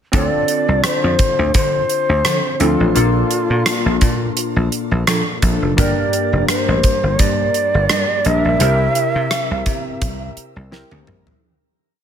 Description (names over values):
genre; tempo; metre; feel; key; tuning
1980s-style pop; 85 BPM; 4/4; swing 55% on 16ths; D minor; A4 = 441 Hz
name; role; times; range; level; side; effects
breathy mellow shakuhachi; melody; 0.1-10.4 s; F4 to E5; -20 LUFS; right 1 dB; ping-pong delay, shimmer reverb
chorused retro synth keys; accompaniment; 0.1-11.4 s; G2 to Bb4; -21 LUFS; left 2 dB; shimmer reverb
dry thumbed slap bass; bass; 0.1-11.3 s; F1 to D3; -19 LUFS; equal; none
gated 80s drum kit; drums; 0.1-11.4 s; hi-hat, kick drum, rim click, snare drum, toms; -19 LUFS; right 1 dB; none
mellow synth brass; stabs; 2.2-11.5 s; F3 to Bb4; -25 LUFS; right 1 dB; chorus, shimmer reverb
room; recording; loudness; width
moderate lush hall reverb, RT60 2.4 s; none; -14 LUFS; side -8 dB against mid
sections
0.1-11.4 verse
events
fade-out 8.6-11.4; drum fill 10.7-11.4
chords
0.1 Dm7; 3.0 Bbmaj7; 5.8 Gm; 8.6 C7